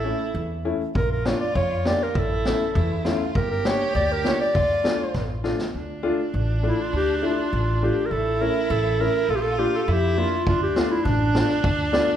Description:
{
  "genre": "klezmer",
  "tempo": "101 BPM",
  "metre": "2/4",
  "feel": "straight",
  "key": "D harmonic minor",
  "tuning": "A4 = 440 Hz",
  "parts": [
    { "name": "warm clarinet", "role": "melody", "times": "0.0-12.2 s", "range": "D4 to D5", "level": "-24 LUFS", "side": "equal", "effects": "none" },
    { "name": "warm violin", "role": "second line", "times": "0.0-12.2 s", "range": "D4 to G4", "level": "-29 LUFS", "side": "right 3 dB", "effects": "none" },
    { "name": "clear upright piano", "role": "accompaniment", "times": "0.0-12.1 s", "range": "A3 to G4", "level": "-28 LUFS", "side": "left 3 dB", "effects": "none" },
    { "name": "upright bass", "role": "bass", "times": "0.0-12.0 s", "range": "G1 to F2", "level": "-27 LUFS", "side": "equal", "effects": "none" },
    { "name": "street-band drum kit", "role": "drums", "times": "1.0-5.7, 10.5-12.1 s", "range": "kick drum, snare drum", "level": "-26 LUFS", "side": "equal", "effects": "none" }
  ],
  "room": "moderate recital hall reverb, RT60 1.5 s",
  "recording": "recorded in a church or concert hall",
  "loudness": "-20 LUFS",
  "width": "side -10 dB against mid",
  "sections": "0.0-5.7 A section; 5.7-12.2 B section",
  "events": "speeding up 0.0-12.2; drum fill 5.2-5.7; clarinet solo 5.7-12.2",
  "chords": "0.0 A; 1.0 Bb; 2.2 A; 3.4 Gm; 4.6 Dm; 8.1 A; 9.3 Bb; 10.5 Dm",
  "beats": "0.35 | 0.96 1.56 | 2.16 2.76 | 3.36 3.96 | 4.56 5.15 | 5.75 6.34 | 6.94 7.53 | 8.12 8.71 | 9.30 9.89 | 10.48 11.06 | 11.65"
}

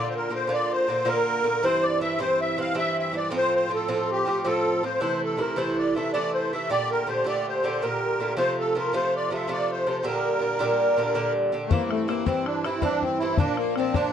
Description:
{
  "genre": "celtic folk, Celtic slip jig",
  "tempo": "107 BPM (dotted quarters)",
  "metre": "9/8",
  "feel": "straight",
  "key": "unclear",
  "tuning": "A4 = 439 Hz",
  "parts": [
    { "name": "musette accordion", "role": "melody", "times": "0.0-14.1 s", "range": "A3 to F5", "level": "-25 LUFS", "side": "equal", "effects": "none" },
    { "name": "Irish bouzouki", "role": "accompaniment", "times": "0.0-14.1 s", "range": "G2 to G4", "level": "-26 LUFS", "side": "right 1 dB", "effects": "none" },
    { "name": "bodhran", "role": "percussion", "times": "11.7-14.0 s", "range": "none", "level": "-25 LUFS", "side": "left 4 dB", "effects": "none" }
  ],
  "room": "moderate studio reverb, RT60 0.6 s",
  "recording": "dark, warm production",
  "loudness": "-22 LUFS",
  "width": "side -8 dB against mid",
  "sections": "0.0-11.7 A section; 11.7-14.1 A section",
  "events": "none",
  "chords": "0.0 Bb; 1.6 C; 3.3 F; 5.0 Am; 6.7 Gmadd9; 8.4 F; 10.0 Gm; 11.7 C; 13.4 Bb",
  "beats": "0.50 1.06 | 1.62 2.19 2.75 | 3.31 3.87 4.43 | 5.00 5.56 6.12 | 6.68 7.24 7.80 | 8.36 8.92 9.48 | 10.04 10.60 11.15 | 11.71 12.27 12.83 | 13.39 13.95"
}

